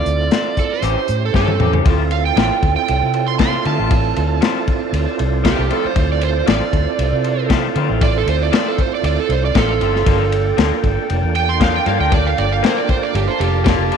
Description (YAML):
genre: straight-eighth soul blues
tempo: 117 BPM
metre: 4/4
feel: straight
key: D minor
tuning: A4 = 439 Hz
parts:
  - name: overdriven electric guitar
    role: melody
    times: 0.0-0.8 s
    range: D5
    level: -22 LUFS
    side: right 3 dB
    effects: harmonic tremolo
  - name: tonewheel organ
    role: accompaniment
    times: 0.0-14.0 s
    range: Bb3 to B#4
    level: -23 LUFS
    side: right 14 dB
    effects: slow rotary speaker, chorus vibrato
  - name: vintage muted fingered electric bass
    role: bass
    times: 0.0-13.9 s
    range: F1 to D3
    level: -19 LUFS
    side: equal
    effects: none
  - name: crunchy breakbeat drum kit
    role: drums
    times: 0.1-14.0 s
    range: hi-hat, kick drum, ride cymbal, snare drum, toms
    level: -20 LUFS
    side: left 3 dB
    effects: none
  - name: electric guitar through a small old amp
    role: stabs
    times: 0.3-14.0 s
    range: E3 to G4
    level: -24 LUFS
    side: left 11 dB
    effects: wide subtle chorus, slapback echo
  - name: overdriven slide guitar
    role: second line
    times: 0.6-14.0 s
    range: G4 to C6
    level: -20 LUFS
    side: right 11 dB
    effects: none
  - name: mellow horn section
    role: sustained chords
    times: 1.9-14.0 s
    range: Bb3 to A5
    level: -28 LUFS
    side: left 10 dB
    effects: none
room: moderate echo chamber reverb, RT60 1.5 s, small room ambience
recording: 1960s-style stereo with parts hard left and right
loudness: -14 LUFS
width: side -7 dB against mid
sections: 0.0-1.9 A section; 1.9-14.0 B section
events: drum fill 1.3-1.9; electric slide guitar solo 1.9-14.0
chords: 0.0 Dm7; 0.8 A7#9; 1.9 Dm7; 10.1 Gm7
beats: 0.32 0.83 1.34 | 1.86 2.37 2.88 3.40 | 3.91 4.43 4.94 5.45 | 5.97 6.48 6.99 7.51 | 8.02 8.53 9.05 9.56 | 10.07 10.59 11.10 11.61 | 12.13 12.64 13.15 13.66